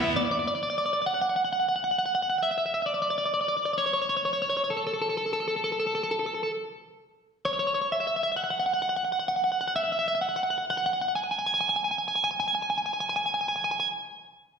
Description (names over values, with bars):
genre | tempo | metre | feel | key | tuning
rock | 65 BPM | 4/4 | straight | unclear | A4 = 440 Hz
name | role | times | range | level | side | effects
twelve-string electric guitar | melody | 0.0-13.9 s | A4 to G#5 | -25 LUFS | equal | none
room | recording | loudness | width
wet recital hall reverb, RT60 1.4 s | recorded in a church or concert hall | -25 LUFS | side -6 dB against mid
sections
0.1-14.6 A section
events
none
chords
none